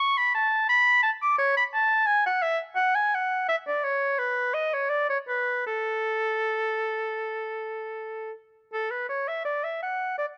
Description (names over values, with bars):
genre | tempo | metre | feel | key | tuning
classical, baroque-style fantasia for unaccompanied oboe | 77-88 BPM | 4/4 | rubato | A major | A4 = 440 Hz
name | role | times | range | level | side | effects
clear oboe | solo | 0.0-10.3 s | A4 to D6 | -26 LUFS | equal | none
room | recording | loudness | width
light reverb | dark, warm production | -26 LUFS | mono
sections
0.0-8.7 A section; 8.7-10.4 A section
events
none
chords
none